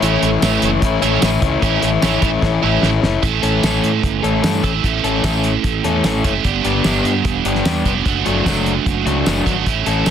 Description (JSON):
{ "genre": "indie rock", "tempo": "149 BPM", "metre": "4/4", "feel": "straight", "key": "A major, A mixolydian from 3.2 s", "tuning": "A4 = 436 Hz", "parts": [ { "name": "ensemble organ-string", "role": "sustained chords", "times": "0.0-3.2 s", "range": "A4 to C#6", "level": "-26 LUFS", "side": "equal", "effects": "ensemble chorus" }, { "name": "biting overdriven guitar", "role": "riff", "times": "0.0-10.1 s", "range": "A2 to A4", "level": "-19 LUFS", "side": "right 11 dB", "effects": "analog chorus, analog delay" }, { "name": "overdriven semi-hollow guitar", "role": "riff", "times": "0.0-10.1 s", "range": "A2 to A4", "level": "-19 LUFS", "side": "left 7 dB", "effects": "none" }, { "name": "fingered electric bass", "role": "bass", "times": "0.0-10.1 s", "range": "E1 to A2", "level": "-22 LUFS", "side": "equal", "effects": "none" }, { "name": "cloth-damped thuddy drum kit", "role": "drums", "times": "0.0-10.1 s", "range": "hi-hat, kick drum, snare drum, tambourine", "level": "-20 LUFS", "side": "equal", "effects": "none" } ], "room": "light reverb", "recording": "dense, heavily limited modern master", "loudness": "-14 LUFS", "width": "side -9 dB against mid", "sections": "0.0-3.2 A section; 3.2-10.1 B section", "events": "drum fill 2.4-3.2", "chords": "0.0 A; 6.5 G; 8.1 D/F#" }